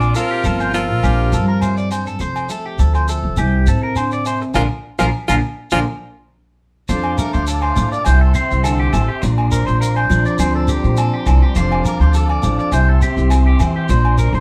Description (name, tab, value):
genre	highlife guitar band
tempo	103 BPM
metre	4/4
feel	straight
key	F major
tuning	A4 = 439 Hz
part	breathy tenor saxophone	melody	0.0-5.8 s	D4 to F4	-24 LUFS	equal	none
part	growling trumpet	second line	0.0-5.8 s	F4 to Bb4	-29 LUFS	equal	none
part	picked steel-string acoustic guitar	accompaniment	0.0-14.4 s	F2 to A4	-25 LUFS	equal	none
part	electric guitar at the edge of break-up	arpeggios	0.0-14.4 s	D4 to D5	-25 LUFS	equal	phaser
part	upright bass	bass	0.0-14.4 s	F1 to Bb2	-18 LUFS	equal	none
part	agogo bells	percussion	0.0-14.2 s	none	-28 LUFS	equal	none
part	shekere	percussion	0.0-14.4 s	none	-28 LUFS	equal	none
part	mellow tonewheel organ	sustained chords	6.9-14.4 s	D5 to D6	-32 LUFS	equal	slow rotary speaker
room	moderate studio reverb, RT60 0.8 s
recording	band playing live in one room, faint mains hum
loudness	-17 LUFS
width	mono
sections	0.0-6.9 A section; 6.9-14.4 B section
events	band accent 4.5-6.9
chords	0.0 Bbadd9; 2.2 F6; 3.4 C5; 4.5 Bb; 6.9 F6; 8.1 C; 9.2 Bbadd9; 11.6 F6; 12.7 C; 13.9 Bbadd9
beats	0.45 1.03 1.62 | 2.21 2.79 3.38 3.96 | 4.55 5.14 5.72 6.31 | 6.89 7.48 8.06 8.64 | 9.23 9.81 10.39 10.98 | 11.56 12.14 12.73 13.31 | 13.89